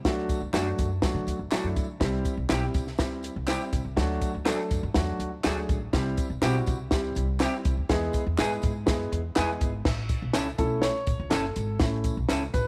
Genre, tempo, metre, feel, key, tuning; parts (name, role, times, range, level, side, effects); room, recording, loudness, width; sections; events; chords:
uptempo 1960s-style soul; 122 BPM; 4/4; straight; A4 = 441 Hz
upright bass; bass; 0.0-12.7 s; F#1 to D3; -33 LUFS; equal
compact cocktail drum kit; drums; 0.0-12.7 s; crash cymbal, hi-hat, kick drum, snare drum; -30 LUFS; equal
warm upright piano; accompaniment; 0.1-12.7 s; F#3 to C#5; -33 LUFS; equal
tambourine and handclaps; percussion; 0.1-12.7 s; -43 LUFS; equal
electric guitar through a small old amp; stabs; 0.5-12.4 s; A3 to A4; -35 LUFS; equal
small room ambience; -27 LUFS; mono
0.0-9.8 A section; 9.8-12.7 B section
upright piano solo 9.8-12.7
0.1 D; 2.0 C; 4.0 D; 5.9 C; 7.9 E; 9.8 A